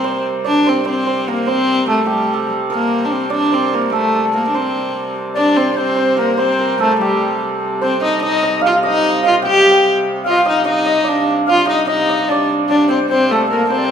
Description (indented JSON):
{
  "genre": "medieval dance",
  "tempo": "98 BPM (dotted quarters)",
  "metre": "6/8",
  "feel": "straight",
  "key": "C dorian",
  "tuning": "A4 = 440 Hz",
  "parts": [
    { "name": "rich viola da gamba", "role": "melody", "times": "0.0-13.9 s", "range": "G3 to G4", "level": "-16 LUFS", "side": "left 1 dB", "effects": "none" },
    { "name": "hammered dulcimer", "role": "second line", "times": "0.0-13.9 s", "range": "G4 to G5", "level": "-18 LUFS", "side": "right 5 dB", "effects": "none" },
    { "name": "warm hurdy-gurdy", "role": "drone", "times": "0.0-13.9 s", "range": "C3 to G3", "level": "-25 LUFS", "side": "left 2 dB", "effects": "none" },
    { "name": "bright reedy tenor recorder", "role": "second line", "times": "5.3-13.9 s", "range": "G4 to G5", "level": "-20 LUFS", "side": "left 6 dB", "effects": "none" }
  ],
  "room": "wet recital hall reverb, RT60 1.6 s",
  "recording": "minimal, uncompressed stereo recording",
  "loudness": "-13 LUFS",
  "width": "side -8 dB against mid",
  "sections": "0.0-5.2 A section; 5.2-13.9 A section",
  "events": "none",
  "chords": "none"
}